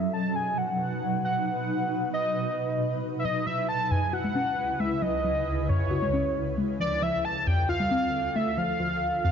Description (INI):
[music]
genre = IDM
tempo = 135 BPM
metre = 4/4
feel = straight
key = unclear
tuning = A4 = 441 Hz
[part]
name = warm velvety synth lead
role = melody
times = 0.0-9.3 s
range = C#5 to A5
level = -28 LUFS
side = equal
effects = chorus, digital delay
[part]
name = granular cloud pad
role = sustained chords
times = 0.0-9.3 s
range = C#2 to B4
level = -30 LUFS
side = right 1 dB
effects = built-in reverb
[part]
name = warbly dusty pluck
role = arpeggios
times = 3.2-9.3 s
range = F2 to F#4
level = -28 LUFS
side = left 2 dB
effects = chorus
[sound]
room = light reverb, digital ambience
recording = nothing above 7.5 kHz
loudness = -25 LUFS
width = side -7 dB against mid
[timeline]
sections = 0.0-9.3 A section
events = filter sweep on ambient pad 0.0-9.3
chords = 0.0 B; 3.2 C#m7; 6.8 Dm